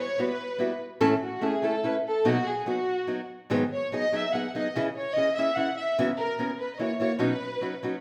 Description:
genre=mexican folk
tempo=146 BPM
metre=3/4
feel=rubato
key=B major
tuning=A4 = 440 Hz
part: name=dark studio violin section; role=melody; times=0.0-8.0 s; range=F#4 to F#5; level=-31 LUFS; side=equal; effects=none
part: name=nylon-string guitar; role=accompaniment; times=0.2-8.0 s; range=F#2 to A4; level=-30 LUFS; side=equal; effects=none
room=moderate recital hall reverb, RT60 1.4 s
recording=none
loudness=-28 LUFS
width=mono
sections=0.0-8.0 A section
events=none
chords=0.0 Emadd9; 1.0 A; 2.2 B; 3.5 G#m7; 4.7 C#m; 6.0 F#7sus4; 6.8 F#7; 7.2 Badd9

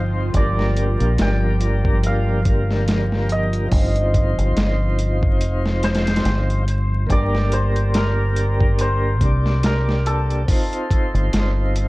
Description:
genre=trip hop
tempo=71 BPM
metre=4/4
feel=swing 57% on 16ths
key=G minor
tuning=A4 = 440 Hz
part: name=santur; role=melody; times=0.0-11.9 s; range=A4 to G5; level=-27 LUFS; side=equal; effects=vintage 12-bit sampler grit, tape echo
part: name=tonewheel organ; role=accompaniment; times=0.0-11.9 s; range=D3 to D5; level=-26 LUFS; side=equal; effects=slow rotary speaker, tremolo
part: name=string machine, cellos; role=sustained chords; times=0.0-7.1 s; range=F3 to F4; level=-29 LUFS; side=equal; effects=ensemble chorus
part: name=deep dub fingered electric bass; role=bass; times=0.0-11.9 s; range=F1 to C2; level=-19 LUFS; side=equal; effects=none
part: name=dusty soul sampler-style drum kit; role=drums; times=0.3-11.9 s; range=hi-hat, kick drum, snare drum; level=-20 LUFS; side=equal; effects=overdrive
room=little or no reverb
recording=worn, warbling old tape, cassette tape, vinyl crackle, warbly pitch drift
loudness=-16 LUFS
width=side -21 dB against mid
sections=0.0-7.1 A section; 7.1-11.9 A section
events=none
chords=0.3 Gm; 3.7 F5/G; 7.1 Gm; 10.5 F7

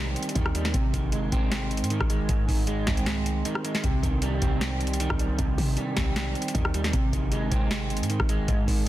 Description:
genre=hip hop, trap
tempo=155 BPM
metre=4/4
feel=half-time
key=unclear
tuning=A4 = 441 Hz
part: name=electric guitar at the edge of break-up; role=accompaniment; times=0.0-8.9 s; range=Ab2 to C4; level=-29 LUFS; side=right 2 dB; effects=analog chorus
part: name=warm 808-style bass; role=bass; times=0.0-8.9 s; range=G1 to C3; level=-29 LUFS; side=equal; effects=none
part: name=booming analog drum machine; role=drums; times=0.2-8.9 s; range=hi-hat, kick drum, rim click, snare drum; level=-26 LUFS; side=equal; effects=none
room=light reverb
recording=dense, heavily limited modern master, vinyl crackle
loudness=-24 LUFS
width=side -14 dB against mid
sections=0.0-8.9 A section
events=none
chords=0.0 Cm; 0.7 Ab; 3.8 Cm; 6.9 Ab

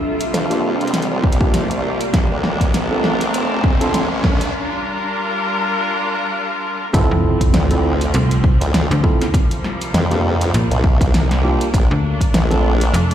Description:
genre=glitch hop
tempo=100 BPM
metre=4/4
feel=swing 57% on 16ths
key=D minor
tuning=A4 = 436 Hz
part: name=clear studio string section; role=sustained chords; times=0.0-13.1 s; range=C3 to Bb4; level=-23 LUFS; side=left 1 dB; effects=sidechain pumping
part: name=riser and impact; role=sound effects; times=0.0-9.3 s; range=none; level=-25 LUFS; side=equal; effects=none
part: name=airy breathy pad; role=texture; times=0.0-4.5 s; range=C4 to C6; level=-25 LUFS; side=right 1 dB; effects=chorus, sidechain pumping
part: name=pop drum kit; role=drums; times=0.2-13.1 s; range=hi-hat, snare drum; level=-21 LUFS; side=equal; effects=overdrive
part: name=formant-sweep wobble bass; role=bass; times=0.3-12.9 s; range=F1 to F2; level=-19 LUFS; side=equal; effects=chorus, tube saturation, high-pass filter
part: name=bright tine electric piano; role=stabs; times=0.5-12.7 s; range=Bb3 to A4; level=-23 LUFS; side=right 1 dB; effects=sidechain pumping, low-pass filter, ping-pong delay
part: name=electronic kick drum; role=drums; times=1.2-12.3 s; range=none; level=-16 LUFS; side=equal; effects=overdrive
part: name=slap-like FM bass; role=bass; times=7.1-13.1 s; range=F1 to D2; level=-17 LUFS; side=equal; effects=none
room=light reverb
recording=played on a big sound system in a bare room, large studio reverb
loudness=-15 LUFS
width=side -10 dB against mid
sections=0.0-6.9 A section; 6.9-13.1 B section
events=build-up 0.0-6.9; drum fill 0.0-4.5; riser 0.0-4.5; filter sweep on tine electric piano 0.0-6.9; break 4.5-6.9; drop 6.9-13.1; impact 6.9-9.3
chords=0.0 C7sus4; 2.1 Bbmaj7; 4.5 Gm7; 6.9 Dm7; 9.3 C7sus4; 11.7 Bbmaj7

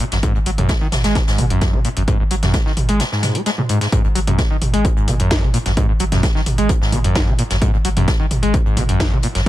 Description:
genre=driving peak-time techno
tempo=130 BPM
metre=4/4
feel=straight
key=G# minor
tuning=A4 = 440 Hz
part: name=overdriven acid bass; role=riff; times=0.0-9.5 s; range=F#2 to B3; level=-20 LUFS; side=equal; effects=distortion, wide subtle chorus, cassette tape, sidechain pumping, dub echo
part: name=jazz brush drum kit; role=drums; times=0.0-9.5 s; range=hi-hat, snare drum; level=-27 LUFS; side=left 2 dB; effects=sidechain pumping on hats, high-pass filter on hats, high-pass filter on snare, high-pass filter on room
part: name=techno drum kit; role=drums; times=0.0-9.5 s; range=hi-hat, snare drum, toms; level=-23 LUFS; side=right 1 dB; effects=none
part: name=warm sub bass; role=bass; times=0.1-9.5 s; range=G#1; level=-21 LUFS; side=equal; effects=overdrive, sidechain pumping, low-pass filter
part: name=electronic kick drum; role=drums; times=0.2-9.5 s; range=none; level=-18 LUFS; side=equal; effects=none
room=little or no reverb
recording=none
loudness=-15 LUFS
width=side -14 dB against mid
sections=0.0-3.9 A section; 3.9-9.5 B section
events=drop 3.9-9.5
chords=none

